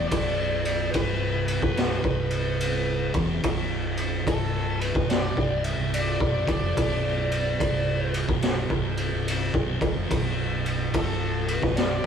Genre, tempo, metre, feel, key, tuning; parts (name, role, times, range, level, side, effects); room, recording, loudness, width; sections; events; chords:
stoner and doom metal; 72 BPM; 4/4; swing 65% on 8ths; A4 = 441 Hz
fuzz lead guitar; melody; 0.0-12.1 s; A4 to E5; -30 LUFS; left 2 dB; wah, distortion
thick fuzz guitar; riff; 0.0-12.1 s; B1 to E#2; -32 LUFS; left 5 dB; distortion
thick fuzz guitar; riff; 0.0-12.0 s; B1 to E#2; -32 LUFS; right 11 dB; distortion
growling fingered electric bass; bass; 0.0-12.1 s; B0 to E#1; -31 LUFS; equal; overdrive
raw garage drum kit; drums; 0.1-12.1 s; kick drum, ride cymbal, snare drum; -26 LUFS; equal
moderate stone room reverb, RT60 1.0 s; band playing live in one room; -23 LUFS; side -7 dB against mid
0.0-12.1 A section
0.0 Bm